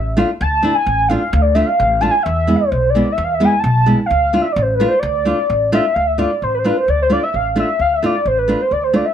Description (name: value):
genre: klezmer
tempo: 130 BPM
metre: 2/4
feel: straight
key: D dorian sharp4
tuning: A4 = 437 Hz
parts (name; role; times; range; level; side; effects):
- warm velvety synth lead; melody; 0.0-9.1 s; B4 to A5; -16 LUFS; equal; chorus, plate reverb
- upright bass; bass; 0.0-9.0 s; A1 to E2; -20 LUFS; equal; none
- nylon-string guitar; accompaniment; 0.2-9.1 s; G#3 to F4; -17 LUFS; right 1 dB; none
room: moderate studio reverb, RT60 0.5 s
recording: none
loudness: -13 LUFS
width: side -9 dB against mid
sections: 0.0-6.0 A section; 6.0-9.1 B section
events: none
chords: 0.0 Dm; 2.3 E; 4.1 Dm